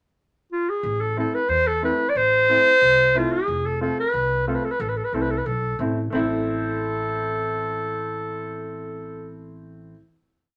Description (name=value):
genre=klezmer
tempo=91 BPM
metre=2/4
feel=straight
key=A harmonic minor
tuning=A4 = 436 Hz
part: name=clear clarinet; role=melody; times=0.5-9.5 s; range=F4 to D5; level=-23 LUFS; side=equal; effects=none
part: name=upright bass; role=bass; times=0.8-9.9 s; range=F1 to E2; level=-33 LUFS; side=equal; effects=none
part: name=clear upright piano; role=accompaniment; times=1.2-9.9 s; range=A3 to F4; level=-30 LUFS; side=equal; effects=none
room=moderate club reverb, RT60 0.5 s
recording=none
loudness=-22 LUFS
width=mono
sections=0.0-0.8 pickup bar; 0.8-6.1 A section; 6.1-8.8 final chord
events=none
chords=0.0 N.C.; 0.8 Am; 3.5 F; 4.8 Am